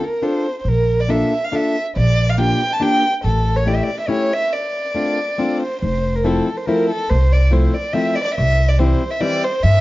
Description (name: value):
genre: musette waltz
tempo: 141 BPM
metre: 3/4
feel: swing 53% on 8ths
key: D minor, F major from 5.8 s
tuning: A4 = 440 Hz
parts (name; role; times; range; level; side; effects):
- dark violin; melody; 0.0-9.8 s; A4 to A5; -20 LUFS; right 1 dB; plate reverb
- fingerpicked plugged-in steel-string acoustic guitar; accompaniment; 0.0-9.4 s; E3 to A4; -20 LUFS; left 2 dB; none
- upright bass; bass; 0.6-3.8, 5.8-9.8 s; F1 to G2; -16 LUFS; equal; none
room: moderate studio reverb, RT60 0.6 s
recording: dark, warm production, nothing above 7.5 kHz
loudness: -15 LUFS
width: side -18 dB against mid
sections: 0.0-5.8 A section; 5.8-9.8 B section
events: break 4.5-5.8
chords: 0.0 Dm7; 0.7 Bbmaj7; 2.0 Gm7/Bb; 3.2 A7; 4.5 Dm7; 5.8 Fmaj7; 8.4 C